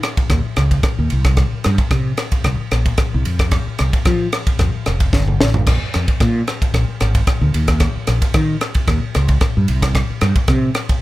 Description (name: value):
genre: electric jazz fusion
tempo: 112 BPM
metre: 4/4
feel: swing 54% on 16ths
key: unclear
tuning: A4 = 439 Hz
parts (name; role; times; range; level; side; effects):
- crisp fusion drum kit; drums; 0.0-11.0 s; crash cymbal, kick drum, ride cymbal, rim click, snare drum, toms; -17 LUFS; equal; none
- mellow fretless electric bass; bass; 0.3-10.7 s; F1 to F3; -17 LUFS; equal; lush chorus
room: little or no reverb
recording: none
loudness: -14 LUFS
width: side -17 dB against mid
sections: 0.0-11.0 A section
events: drum fill 5.1-5.7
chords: none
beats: 0.30 0.83 | 1.37 1.91 2.44 2.98 | 3.51 4.05 4.59 5.12 | 5.66 6.19 6.73 7.27 | 7.80 8.34 8.87 9.41 | 9.95 10.48